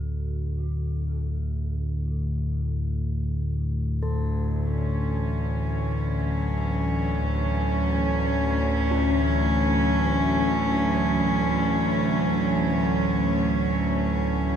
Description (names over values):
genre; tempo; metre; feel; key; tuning
dark ambient drone; free time; none; none; unclear; A4 = 440 Hz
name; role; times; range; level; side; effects
dark detuned synth bell; arpeggios; 0.0-14.6 s; C#4 to F#4; -34 LUFS; left 6 dB; none
deep rumbling drone; drone; 0.0-14.6 s; D2 to A2; -27 LUFS; equal; built-in reverb
quartz singing bowl; texture; 0.0-14.6 s; A3 to A4; -40 LUFS; equal; none
rich chamber cello section; sustained chords; 4.0-14.6 s; D2 to C#4; -23 LUFS; right 1 dB; none
room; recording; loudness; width
wet plate reverb, RT60 2.8 s; dreamy mix soaked in reverb; -22 LUFS; side -8 dB against mid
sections
0.0-14.6 A section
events
none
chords
0.0 D; 4.0 A6/D